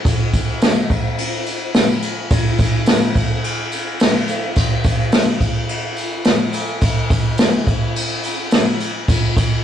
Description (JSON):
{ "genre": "rock", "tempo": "106 BPM", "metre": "4/4", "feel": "straight", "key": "none", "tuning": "none", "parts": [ { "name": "jazz brush drum kit", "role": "drums", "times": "0.1-9.5 s", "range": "crash cymbal, kick drum, ride cymbal, snare drum", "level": "-15 LUFS", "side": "equal", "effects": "vintage 12-bit sampler grit" }, { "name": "tambourine", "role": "percussion", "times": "0.1-9.5 s", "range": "none", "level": "-33 LUFS", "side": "right 2 dB", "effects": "none" } ], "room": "moderate stone room reverb, RT60 1.1 s", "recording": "rough rehearsal-room recording", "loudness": "-15 LUFS", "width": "side -10 dB against mid", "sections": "0.0-9.6 A section", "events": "none", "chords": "none" }